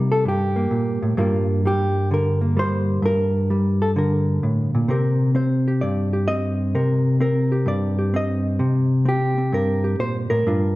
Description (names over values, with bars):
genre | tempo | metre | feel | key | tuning
solo jazz | 130 BPM | 4/4 | swing 66% on 8ths | unclear | A4 = 440 Hz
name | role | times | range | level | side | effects
hollow-body jazz guitar | solo | 0.0-10.8 s | G2 to Eb5 | -18 LUFS | equal | none
room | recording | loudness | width
moderate recital hall reverb, RT60 1.5 s | recorded in a church or concert hall | -18 LUFS | side -18 dB against mid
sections
0.0-10.8 A section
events
none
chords
0.0 Cm7; 1.2 Gm7; 4.9 Cm7